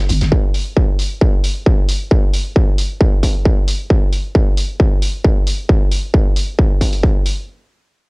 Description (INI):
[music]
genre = driving peak-time techno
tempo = 134 BPM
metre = 4/4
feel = straight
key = none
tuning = none
[part]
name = electronic hi-hat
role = drums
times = 0.1-7.4 s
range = none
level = -25 LUFS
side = right 1 dB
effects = sidechain pumping on hats, cassette tape
[part]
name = electronic kick drum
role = drums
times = 0.3-7.1 s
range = none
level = -13 LUFS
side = equal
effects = distortion, cassette tape
[sound]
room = little or no reverb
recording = home recording on cassette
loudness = -13 LUFS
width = side -33 dB against mid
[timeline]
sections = 0.0-7.5 A section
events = none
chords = none